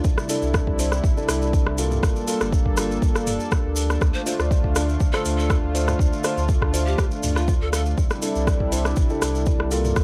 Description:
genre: afro house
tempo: 121 BPM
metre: 4/4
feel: straight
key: unclear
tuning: A4 = 440 Hz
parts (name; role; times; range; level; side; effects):
- warm analog pad; sustained chords; 0.0-10.0 s; C3 to A4; -30 LUFS; equal; chorus, sidechain pumping
- felt-muted upright piano; stabs; 0.0-10.0 s; Bb3 to D5; -31 LUFS; equal; sidechain pumping, tape echo
- warm sub bass; bass; 0.0-10.0 s; F1 to D2; -27 LUFS; equal; sidechain pumping
- electronic kick drum; drums; 0.0-10.0 s; none; -23 LUFS; equal; studio reverb, cassette tape
- maracas; percussion; 0.0-10.0 s; none; -37 LUFS; equal; none
- deep house drum kit; drums; 0.2-10.0 s; hi-hat, rim click, toms; -30 LUFS; equal; studio reverb, cassette tape
- breathy bright pan flute; melody; 4.1-7.8 s; F4 to C5; -35 LUFS; equal; cassette tape, tape echo
room: light reverb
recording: home recording on cassette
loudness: -22 LUFS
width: mono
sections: 0.0-10.0 A section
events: none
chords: 0.0 C69; 2.0 Gm9; 4.0 Dm7; 8.0 C69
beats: | 0.05 0.54 1.04 1.53 | 2.03 2.53 3.02 3.52 | 4.01 4.51 5.00 5.50 | 6.00 6.49 6.99 7.49 | 7.98 8.48 8.97 9.47 | 9.96

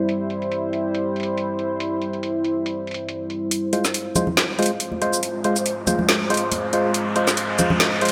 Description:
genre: deep dubstep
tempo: 140 BPM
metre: 4/4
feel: swing 55% on 16ths, half-time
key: F harmonic minor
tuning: A4 = 440 Hz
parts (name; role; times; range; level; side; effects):
- deep dark ambient pad; sustained chords; 0.0-8.1 s; G3 to C5; -27 LUFS; equal; chorus, built-in reverb
- garage drum kit; drums; 0.1-8.1 s; hi-hat, shaker, snare drum; -24 LUFS; equal; overdrive, low-pass filter on hats, small room reverb, low-pass filter on snare, low-pass filter on perc, gated reverb
- riser; sound effects; 4.9-8.1 s; none; -32 LUFS; equal; none
- percussive organ stab; stabs; 3.7-8.1 s; Ab3 to C5; -26 LUFS; equal; chorus, dub echo
- congas; percussion; 4.2-7.8 s; none; -28 LUFS; equal; none
room: wet lush hall reverb, RT60 1.8 s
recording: bright 1980s-style digital production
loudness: -22 LUFS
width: mono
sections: 0.0-3.5 A section; 3.5-8.1 B section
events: filter sweep on ambient pad 0.0-3.5; build-up 3.5-8.1; filter sweep on synth stab 3.5-8.1; riser 4.9-8.1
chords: 0.0 C; 3.5 Fm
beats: | 0.09 0.52 0.94 1.37 | 1.80 2.23 2.66 3.09 | 3.52 3.94 4.37 4.80 | 5.23 5.66 6.09 6.52 | 6.95 7.37 7.80

